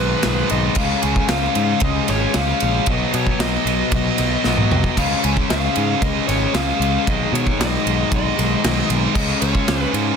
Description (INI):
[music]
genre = hard rock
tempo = 115 BPM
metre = 4/4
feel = straight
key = unclear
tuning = A4 = 440 Hz
[part]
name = dark smooth lead guitar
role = melody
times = 0.0-9.9 s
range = B4 to G#5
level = -25 LUFS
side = left 2 dB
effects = overdrive
[part]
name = biting overdriven guitar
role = riff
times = 0.0-10.2 s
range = G#2 to C#4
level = -23 LUFS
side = left 11 dB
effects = none
[part]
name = heavy high-gain guitar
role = riff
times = 0.0-10.2 s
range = G#2 to C#4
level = -23 LUFS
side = right 14 dB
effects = distortion
[part]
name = growling picked electric bass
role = bass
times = 0.0-10.1 s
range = G#1 to B2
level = -22 LUFS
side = right 1 dB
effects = overdrive
[part]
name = big rock drum kit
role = drums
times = 0.2-10.1 s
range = crash cymbal, kick drum, ride cymbal, snare drum, toms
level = -22 LUFS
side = right 1 dB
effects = none
[sound]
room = light reverb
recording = dense, heavily limited modern master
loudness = -16 LUFS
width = side -6 dB against mid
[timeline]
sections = 0.0-10.2 A section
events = drum fill 4.5-5.0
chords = 0.0 G#m/B; 0.8 C#; 2.9 B; 5.0 C#; 7.1 G#m/B; 9.2 C#5